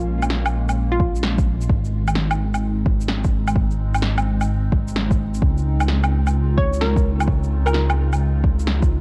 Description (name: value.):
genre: future garage.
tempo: 129 BPM.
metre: 4/4.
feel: swing 66% on 16ths.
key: unclear.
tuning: A4 = 440 Hz.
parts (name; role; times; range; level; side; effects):
hollow square pluck; melody; 0.0-1.2, 6.6-7.8 s; F4 to Db5; -30 LUFS; equal; chorus, tape echo.
warbly tape-like pad; sustained chords; 0.0-9.0 s; Db3 to F4; -30 LUFS; equal; chorus, built-in reverb, phaser, sidechain pumping.
dark detuned saw bass; bass; 0.0-9.0 s; Ab1 to Db2; -23 LUFS; equal; sidechain pumping.
electronic shaker, woodblock and snare drum; drums; 0.0-8.9 s; none; -28 LUFS; equal; overdrive.
electronic kick drum; drums; 1.0-8.9 s; none; -22 LUFS; equal; overdrive.
room: digital ambience.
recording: cassette tape.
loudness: -20 LUFS.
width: mono.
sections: 0.0-9.0 A section.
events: none.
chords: 0.0 Bbm7; 1.7 Ab; 5.4 Dbmaj7.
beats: 0.30 0.77 1.23 | 1.70 2.16 2.63 3.09 | 3.56 4.02 4.49 4.95 | 5.42 5.88 6.35 6.81 | 7.28 7.74 8.21 8.68.